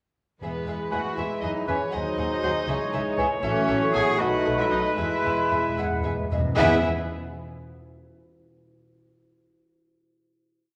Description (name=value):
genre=quick classical-period movement for symphony orchestra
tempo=78 BPM (dotted quarters)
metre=6/8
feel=straight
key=E major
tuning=A4 = 440 Hz
part: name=warm chamber violin section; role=melody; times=0.4-6.9 s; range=B4 to G#5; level=-35 LUFS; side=equal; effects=none
part: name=bright clarinet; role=second line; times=0.4-6.8 s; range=E3 to B3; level=-37 LUFS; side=equal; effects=none
part: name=warm chamber violin section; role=second line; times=0.4-6.9 s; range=G#4 to F#5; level=-38 LUFS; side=equal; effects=none
part: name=warm chamber viola section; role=accompaniment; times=0.4-6.9 s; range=E3 to E4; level=-36 LUFS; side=equal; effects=none
part: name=mellow French horn section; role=sustained chords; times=0.4-6.8 s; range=E3 to G#4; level=-36 LUFS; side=equal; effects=none
part: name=bright trumpet section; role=stabs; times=0.4-6.8 s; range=B4 to C#5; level=-33 LUFS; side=equal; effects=none
part: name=dark studio double bass section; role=bass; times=0.4-6.9 s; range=A1 to E2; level=-36 LUFS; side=equal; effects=none
part: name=rich chamber cello section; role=bass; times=0.4-6.9 s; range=B3 to G#4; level=-33 LUFS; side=equal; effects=none
part: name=timpani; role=percussion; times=0.4-1.1, 5.0-6.8 s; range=E2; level=-33 LUFS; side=equal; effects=none
part: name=large flute ensemble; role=second line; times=0.9-6.9 s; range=D#5 to G#5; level=-35 LUFS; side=equal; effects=none
part: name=warm oboe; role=second line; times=0.9-6.8 s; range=B4 to C#5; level=-36 LUFS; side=equal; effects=none
part: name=dark bassoon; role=accompaniment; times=0.9-6.8 s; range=E3 to A3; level=-35 LUFS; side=equal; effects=none
room=wet concert hall reverb, RT60 1.8 s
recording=worn, warbling old tape, cassette tape, warbly pitch drift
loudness=-25 LUFS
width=mono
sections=0.4-6.6 A section; 6.6-8.1 final chord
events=timpani fill 5.0-6.6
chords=0.4 E; 1.9 G#7/D#; 2.7 C#m; 3.4 F#m7; 4.2 B7; 5.0 E